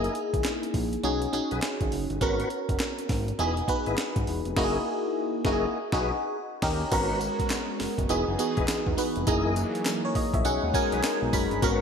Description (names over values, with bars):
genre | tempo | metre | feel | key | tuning
R&B, new jack swing | 102 BPM | 4/4 | swing 63% on 16ths | G# minor | A4 = 440 Hz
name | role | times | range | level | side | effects
FM electric piano | accompaniment | 0.0-11.8 s | A#3 to B5 | -28 LUFS | equal | chorus, phaser
tonewheel organ | stabs | 0.0-11.8 s | E4 to D#5 | -34 LUFS | left 3 dB | chorus vibrato, slow rotary speaker, ping-pong delay
fat analog bass | bass | 0.0-11.8 s | E1 to E2 | -32 LUFS | equal | none
breakbeat sampler-style drum kit | drums | 0.0-11.8 s | crash cymbal, handclaps, hi-hat, kick drum, snare drum, tambourine | -30 LUFS | equal | gated reverb
brassy analog pad | sustained chords | 6.9-11.8 s | E3 to G#4 | -34 LUFS | left 1 dB | chorus
room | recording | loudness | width
wet plate reverb, RT60 2.4 s | bright 1980s-style digital production | -25 LUFS | side -6 dB against mid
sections
0.0-6.9 A section; 6.9-11.8 B section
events
band accent 4.6-6.9; FM electric piano fill 9.9-11.6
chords
0.0 F#13; 1.0 B6; 2.2 G#m11; 3.4 Emaj7; 4.6 F#13; 5.7 B6; 6.3 D#7; 6.9 G#m11; 8.1 Emaj7; 9.3 F#13; 10.4 B6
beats
0.45 1.03 1.62 | 2.21 2.80 3.39 3.98 | 4.56 5.15 5.74 6.33 | 6.92 7.51 8.09 8.68 | 9.27 9.86 10.45 11.04 | 11.62